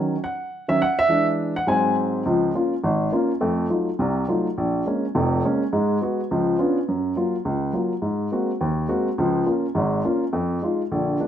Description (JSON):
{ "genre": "jazz", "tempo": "208 BPM", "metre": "4/4", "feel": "swing 60% on 8ths", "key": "Db major", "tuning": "A4 = 440 Hz", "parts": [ { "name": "dark baby grand piano", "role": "accompaniment", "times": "0.0-11.3 s", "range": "F1 to G#5", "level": "-20 LUFS", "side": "equal", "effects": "none" } ], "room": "moderate large studio reverb, RT60 0.9 s", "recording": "none", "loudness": "-20 LUFS", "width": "side -10 dB against mid", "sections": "0.0-2.2 A section; 2.2-11.3 B section", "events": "grand piano solo 0.0-2.2", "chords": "0.0 D#m7; 1.1 E7; 1.7 G#7; 2.2 Db6; 3.4 F7b9; 4.6 Bbm7; 5.7 Abm7; 6.3 Db7b9; 6.9 Gbmaj7; 8.0 Ab9; 9.2 Db6; 10.3 Fm7" }